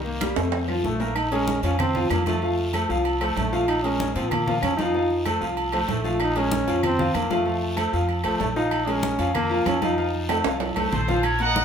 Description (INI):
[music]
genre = latin, salsa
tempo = 191 BPM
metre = 4/4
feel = straight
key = Bb minor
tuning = A4 = 440 Hz
[part]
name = clear trombone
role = melody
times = 0.0-10.4 s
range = F3 to Eb4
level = -27 LUFS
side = right 1 dB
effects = none
[part]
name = clear concert grand piano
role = accompaniment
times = 0.0-11.6 s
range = Eb3 to Bb5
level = -25 LUFS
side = left 1 dB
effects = none
[part]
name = upright bass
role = bass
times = 0.0-11.6 s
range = Bb1 to Bb2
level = -29 LUFS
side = equal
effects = none
[part]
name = congas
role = percussion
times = 0.1-11.6 s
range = none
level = -31 LUFS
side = equal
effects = none
[part]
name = claves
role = percussion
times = 0.2-11.4 s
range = none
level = -38 LUFS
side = left 1 dB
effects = none
[part]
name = guiro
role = percussion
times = 0.2-11.6 s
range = none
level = -39 LUFS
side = left 2 dB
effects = none
[part]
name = timbales and agogo bells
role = percussion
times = 0.2-11.5 s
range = none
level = -28 LUFS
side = right 4 dB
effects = none
[part]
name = bright trumpet section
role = melody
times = 10.9-11.6 s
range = A4 to Gb5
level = -24 LUFS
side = left 1 dB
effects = none
[sound]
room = wet studio reverb, RT60 0.8 s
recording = band playing live in one room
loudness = -21 LUFS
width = side -7 dB against mid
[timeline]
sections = 0.0-1.2 A section; 1.2-11.2 B section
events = drum fill 0.4-1.2, 10.3-11.2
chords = 0.0 Cm7; 0.5 F; 1.2 Bbm7; 2.4 F; 3.7 Bbm7; 4.9 F7; 6.2 Bbm7; 7.5 F; 8.7 Bbm7; 10.0 F7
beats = 0.21 0.53 0.84 | 1.16 1.48 1.79 2.11 | 2.42 2.74 3.05 3.37 | 3.68 4.00 4.31 4.63 | 4.94 5.26 5.57 5.89 | 6.20 6.52 6.83 7.15 | 7.46 7.78 8.09 8.40 | 8.72 9.03 9.35 9.66 | 9.98 10.29 10.61 10.92 | 11.23 11.55